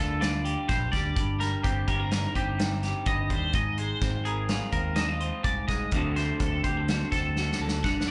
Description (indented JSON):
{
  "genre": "math rock and midwest emo",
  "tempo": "126 BPM",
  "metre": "5/4",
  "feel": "straight",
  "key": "unclear",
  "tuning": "A4 = 440 Hz",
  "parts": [
    { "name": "electric guitar through a small old amp", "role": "accompaniment", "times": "0.0-8.1 s", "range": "G2 to C5", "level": "-34 LUFS", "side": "equal", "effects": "slapback echo" },
    { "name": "twangy electric guitar", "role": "arpeggios", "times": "0.0-8.1 s", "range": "G4 to F#5", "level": "-34 LUFS", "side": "equal", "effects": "analog chorus, slapback echo" },
    { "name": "picked electric bass", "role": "bass", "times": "0.0-8.1 s", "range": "G1 to Eb2", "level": "-33 LUFS", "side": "equal", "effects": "none" },
    { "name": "loose indie drum kit", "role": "drums", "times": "0.2-8.1 s", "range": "hi-hat, kick drum, snare drum", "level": "-33 LUFS", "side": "equal", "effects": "none" }
  ],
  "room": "light reverb",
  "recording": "live gig heard through the venue's PA, club reverb, nothing above 10.8 kHz",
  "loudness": "-28 LUFS",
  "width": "mono",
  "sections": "0.0-8.1 A section",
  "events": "drum fill 7.4-8.1",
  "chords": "0.0 Gm9; 1.2 Eb6/G; 3.5 Ab69; 5.9 D7"
}